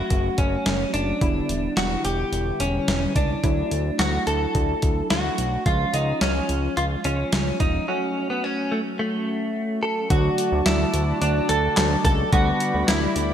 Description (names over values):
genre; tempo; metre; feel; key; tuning
synth-pop; 108 BPM; 4/4; straight; D major; A4 = 441 Hz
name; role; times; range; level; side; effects
direct-recorded clean electric guitar; melody; 0.0-13.3 s; A3 to A4; -24 LUFS; equal; lush chorus, digital delay
funky polysynth comp; accompaniment; 0.0-13.3 s; D3 to B4; -28 LUFS; right 1 dB; chorus
fat analog bass; bass; 0.0-13.3 s; Eb1 to D2; -25 LUFS; equal; none
clean 12-bit digital drum machine; drums; 0.1-13.3 s; handclaps, hi-hat, kick drum, snare drum; -24 LUFS; equal; gated reverb
warm analog pad; sustained chords; 10.1-13.3 s; G3 to D6; -30 LUFS; equal; chorus
room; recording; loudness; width
moderate lush hall reverb, RT60 2.3 s; bright 1980s-style digital production; -20 LUFS; side -9 dB against mid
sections
0.0-10.1 A section; 10.1-13.3 B section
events
break 7.9-10.1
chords
0.0 F#m; 1.2 Em7; 3.4 Dadd9; 5.7 C#; 7.9 F#m; 10.1 D; 12.3 G/D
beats
0.10 0.66 | 1.22 1.77 2.33 2.88 | 3.44 3.99 4.55 5.10 | 5.66 6.21 6.77 7.33 | 7.88 8.44 8.99 9.55 | 10.10 10.66 11.21 11.77 | 12.33 12.88